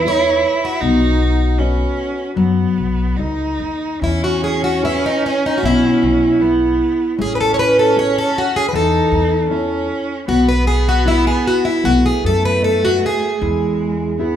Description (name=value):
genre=fado-style ballad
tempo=77 BPM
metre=4/4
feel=rubato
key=E major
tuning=A4 = 440 Hz
part: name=picked plugged-in twelve-string acoustic guitar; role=melody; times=0.0-14.4 s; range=C#4 to C#5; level=-17 LUFS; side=equal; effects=none
part: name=rich cello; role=second line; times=0.0-14.4 s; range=G#3 to E4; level=-21 LUFS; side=right 2 dB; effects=none
part: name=nylon-string guitar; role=accompaniment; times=0.0-14.4 s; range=B2 to D#5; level=-21 LUFS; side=left 3 dB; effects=none
part: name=upright bass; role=bass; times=0.0-14.4 s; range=A1 to F#2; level=-21 LUFS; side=equal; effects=none
room=wet large studio reverb, RT60 1.1 s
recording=band playing live in one room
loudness=-14 LUFS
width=side -10 dB against mid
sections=0.0-14.4 A section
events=none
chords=0.0 Aadd9; 0.8 B7; 4.0 E; 7.2 Amaj7; 10.3 B7sus4; 11.8 B7; 13.4 E